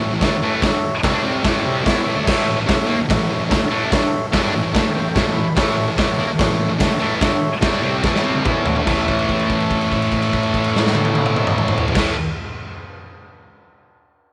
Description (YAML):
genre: garage rock duo or trio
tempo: 145 BPM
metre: 4/4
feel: straight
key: A mixolydian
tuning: A4 = 440 Hz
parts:
  - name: combo organ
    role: sustained chords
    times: 0.0-12.1 s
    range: A4 to B5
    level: -27 LUFS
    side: equal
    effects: none
  - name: thick fuzz guitar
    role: riff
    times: 0.0-12.1 s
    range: G2 to E4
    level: -22 LUFS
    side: equal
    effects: distortion
  - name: raw garage drum kit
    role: drums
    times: 0.2-12.1 s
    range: crash cymbal, hi-hat, kick drum, snare drum, toms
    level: -22 LUFS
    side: equal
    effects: none
room: moderate spring reverb, RT60 1.6 s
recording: none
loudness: -18 LUFS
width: mono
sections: 0.0-2.3 A section; 2.3-8.9 A section; 8.9-12.2 B section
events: transistor combo organ fill 4.3-5.6; drum fill 8.0-8.9; held note 8.9-11.9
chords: 0.0 A